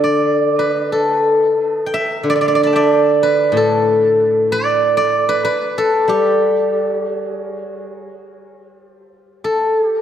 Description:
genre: chinese traditional, Chinese solo plucked strings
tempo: 83-96 BPM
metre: 4/4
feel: rubato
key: G gong mode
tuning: A4 = 440 Hz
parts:
  - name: steel-string zither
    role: solo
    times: 0.0-10.0 s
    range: A2 to B5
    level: -14 LUFS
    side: equal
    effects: diffuse ambient delay
room: wet lush hall reverb, RT60 1.8 s, small room ambience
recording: dreamy mix soaked in reverb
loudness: -13 LUFS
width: side -9 dB against mid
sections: 0.0-10.0 A section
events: none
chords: none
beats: 0.21 0.91 1.60 | 2.27 2.92 3.55 4.18 | 4.81 5.45 6.09 6.73 | 7.39 8.07 8.76 9.46

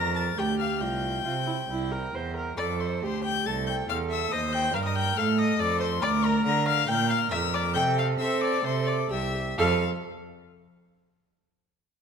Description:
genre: quick classical-period movement for string quartet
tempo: 124-142 BPM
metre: 4/4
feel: straight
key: F major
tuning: A4 = 439 Hz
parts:
  - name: warm violin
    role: melody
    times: 0.0-9.8 s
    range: Bb5 to Bb6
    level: -30 LUFS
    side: left 11 dB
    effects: none
  - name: rich violin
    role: second line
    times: 0.0-9.8 s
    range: Bb4 to Bb5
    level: -31 LUFS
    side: left 3 dB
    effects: none
  - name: warm viola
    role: accompaniment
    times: 0.0-9.8 s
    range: E4 to C5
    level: -31 LUFS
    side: right 3 dB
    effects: none
  - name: rich cello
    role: bass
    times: 0.0-9.8 s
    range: C2 to C4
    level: -28 LUFS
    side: right 3 dB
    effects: none
room: moderate scoring stage reverb, RT60 1.7 s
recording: none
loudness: -24 LUFS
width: side -6 dB against mid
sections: 0.0-9.6 A section; 9.6-11.4 B section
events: none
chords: 0.0 Bb; 0.8 Csus4; 1.7 C; 2.6 F; 4.3 F7/Eb; 6.0 Bb/D; 6.9 Bb5; 7.8 C69; 8.6 C; 9.6 F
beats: 0.37 | 0.81 1.25 1.70 2.14 | 2.58 3.02 3.46 3.89 | 4.32 4.75 5.18 5.60 | 6.03 6.46 6.89 7.32 | 7.76 8.20 8.65 9.11 | 9.58

